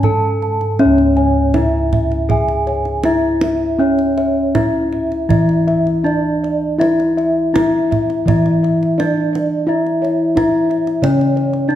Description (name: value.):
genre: Javanese gamelan.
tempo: 81 BPM.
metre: 4/4.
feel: uneven beats.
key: C# pelog.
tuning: A4 = 440 Hz.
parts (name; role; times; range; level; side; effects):
gamelan-type bronze metallophone; melody; 0.0-11.8 s; C#4 to A4; -17 LUFS; left 2 dB; none.
gamelan-type bossed gongs; arpeggios; 0.0-11.8 s; C#5 to A5; -24 LUFS; left 4 dB; none.
gamelan-type bossed gongs; bass; 0.0-11.8 s; C#2 to E4; -18 LUFS; right 1 dB; none.
kendang; percussion; 0.0-11.8 s; none; -22 LUFS; right 3 dB; none.
gamelan-type bronze metallophone; arpeggios; 0.1-11.8 s; C#5 to A5; -23 LUFS; right 6 dB; none.
room: moderate recital hall reverb, RT60 1.7 s.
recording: dark, warm production.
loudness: -13 LUFS.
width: side -11 dB against mid.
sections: 0.8-11.8 A section.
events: none.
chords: none.